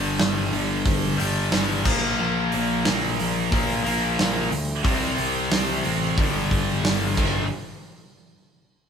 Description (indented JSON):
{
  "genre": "hard rock",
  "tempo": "90 BPM",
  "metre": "4/4",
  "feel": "straight",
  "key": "G minor",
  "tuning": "A4 = 439 Hz",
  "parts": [
    { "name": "cranked stack guitar", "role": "riff", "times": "0.0-7.4 s", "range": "G2 to C4", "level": "-26 LUFS", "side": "left 6 dB", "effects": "overdrive" },
    { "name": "scooped high-gain guitar", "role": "riff", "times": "0.0-7.4 s", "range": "G2 to C4", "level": "-27 LUFS", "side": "right 6 dB", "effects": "distortion" },
    { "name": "fuzz picked electric bass", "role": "bass", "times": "0.0-7.5 s", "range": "G1 to D2", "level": "-28 LUFS", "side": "equal", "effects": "overdrive" },
    { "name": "big rock drum kit", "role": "drums", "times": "0.2-7.3 s", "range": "crash cymbal, hi-hat, kick drum, snare drum", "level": "-25 LUFS", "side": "right 1 dB", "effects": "none" }
  ],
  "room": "light reverb",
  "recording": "band playing live in one room",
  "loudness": "-20 LUFS",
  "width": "side -7 dB against mid",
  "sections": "0.0-7.5 A section; 7.5-8.9 B section",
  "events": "drum fill 7.2-7.5",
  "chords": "0.0 G5; 1.9 Bb5; 4.8 C5; 6.2 G5; 7.5 N.C."
}